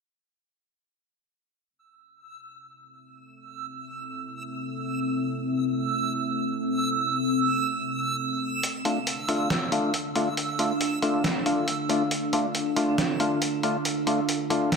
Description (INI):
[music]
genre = deep dubstep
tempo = 138 BPM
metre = 4/4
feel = swing 55% on 16ths, half-time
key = A minor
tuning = A4 = 440 Hz
[part]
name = deep dark ambient pad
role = sustained chords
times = 4.1-14.8 s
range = C4 to F5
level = -28 LUFS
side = left 1 dB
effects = chorus, built-in reverb
[part]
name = backwards swelling texture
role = texture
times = 2.3-14.8 s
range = E6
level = -31 LUFS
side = right 5 dB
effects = built-in reverb
[part]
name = trip hop sampler-style drum kit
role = drums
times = 8.6-14.8 s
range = hi-hat, snare drum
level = -29 LUFS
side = equal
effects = studio reverb
[part]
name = percussive organ stab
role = stabs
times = 8.9-14.7 s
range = A3 to F4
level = -26 LUFS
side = left 2 dB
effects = analog chorus, cassette tape, dub echo
[sound]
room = wet echo chamber reverb, RT60 1.5 s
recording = none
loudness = -24 LUFS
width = side -5 dB against mid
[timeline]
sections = 1.7-14.8 A section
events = none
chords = 1.7 Am; 8.6 Dm